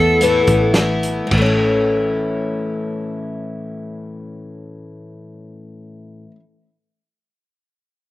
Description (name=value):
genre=folk rock and heartland rock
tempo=free time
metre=none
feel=none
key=A major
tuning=A4 = 439 Hz
part: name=bright tenor saxophone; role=melody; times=0.0-0.8 s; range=A4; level=-17 LUFS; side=right 1 dB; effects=slapback echo
part: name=picked twelve-string acoustic guitar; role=accompaniment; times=0.0-6.4 s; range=A2 to E4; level=-20 LUFS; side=left 2 dB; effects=slapback echo
part: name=fingered electric bass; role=bass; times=0.0-6.2 s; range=A1 to E2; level=-20 LUFS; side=right 1 dB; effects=none
part: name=loose indie drum kit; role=drums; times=0.2-1.5 s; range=crash cymbal, hi-hat, kick drum, snare drum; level=-22 LUFS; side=right 1 dB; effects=none
room=little or no reverb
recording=recorded outdoors, with no room sound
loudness=-15 LUFS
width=side -16 dB against mid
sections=0.0-1.3 A section; 1.3-5.9 B section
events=slowing down 0.0-1.3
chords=0.0 Asus2; 1.3 A